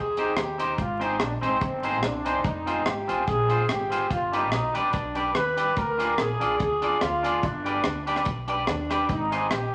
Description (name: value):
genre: ska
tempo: 144 BPM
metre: 4/4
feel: swing 55% on 8ths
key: unclear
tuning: A4 = 440 Hz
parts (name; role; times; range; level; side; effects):
- warm horn section; melody; 0.0-9.7 s; C4 to B4; -30 LUFS; equal; none
- upright bass; bass; 0.0-9.7 s; F1 to Eb2; -36 LUFS; equal; none
- clean electric guitar; accompaniment; 0.2-9.5 s; C4 to Eb5; -30 LUFS; equal; tape echo
- deep reggae drum kit; drums; 0.2-9.6 s; hi-hat, kick drum, rim click; -33 LUFS; equal; tape echo
room: wet large studio reverb, RT60 1.0 s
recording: vinyl crackle, nothing above 10.3 kHz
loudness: -26 LUFS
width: mono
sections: 0.0-9.7 A section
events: none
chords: 0.0 Cm; 0.8 Ab; 2.4 Fm; 4.1 G; 5.8 Ddim; 7.4 G; 9.1 Ab